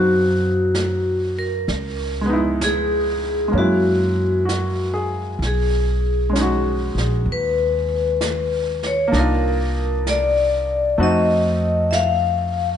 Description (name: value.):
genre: jazz ballad.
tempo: 64 BPM.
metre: 4/4.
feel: swing 67% on 8ths.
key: unclear.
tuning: A4 = 440 Hz.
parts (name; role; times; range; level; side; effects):
vibraphone with medium hard mallets; melody; 0.0-12.7 s; Gb4 to F5; -20 LUFS; left 2 dB; none.
clear baby grand piano; accompaniment; 0.0-12.8 s; Gb3 to F5; -24 LUFS; equal; none.
upright bass; bass; 0.0-12.8 s; Bb1 to Gb2; -22 LUFS; equal; none.
jazz brush drum kit; drums; 0.7-12.8 s; brushed snare drum, hi-hat, snare drum; -31 LUFS; right 2 dB; none.
room: light reverb.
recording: nothing above 10.7 kHz.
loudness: -17 LUFS.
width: side -9 dB against mid.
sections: 0.0-12.8 A section.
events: none.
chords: 0.0 Ebm9; 1.7 Dbm9; 3.5 Gb9; 5.4 B69; 9.1 Cm11; 11.0 F7b9.